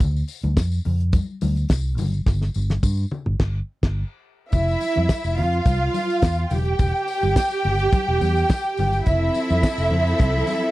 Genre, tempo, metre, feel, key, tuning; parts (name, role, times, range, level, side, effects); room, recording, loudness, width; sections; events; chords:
disco; 106 BPM; 4/4; straight; A4 = 440 Hz
fingered electric bass; bass; 0.0-10.4 s; E1 to G2; -22 LUFS; equal
damped 70s drum kit; drums; 0.0-10.7 s; crash cymbal, hi-hat, kick drum, snare drum, toms; -19 LUFS; equal
congas; percussion; 0.0-10.6 s; -31 LUFS; left 4 dB
tambourine; percussion; 0.0-10.6 s; -42 LUFS; left 12 dB
warm studio string section; second line; 4.5-10.7 s; E4 to G5; -22 LUFS; right 1 dB
clear studio string section; sustained chords; 9.1-10.7 s; F3 to A4; -25 LUFS; equal
little or no reverb; dry, close 1970s-style studio recording; -19 LUFS; side -17 dB against mid
0.0-4.5 A section; 4.5-10.7 B section
drum fill 2.3-4.5; band accent 3.4-4.5
0.0 Dm7; 2.0 N.C.; 4.5 F5; 6.5 Em; 9.1 Fmaj7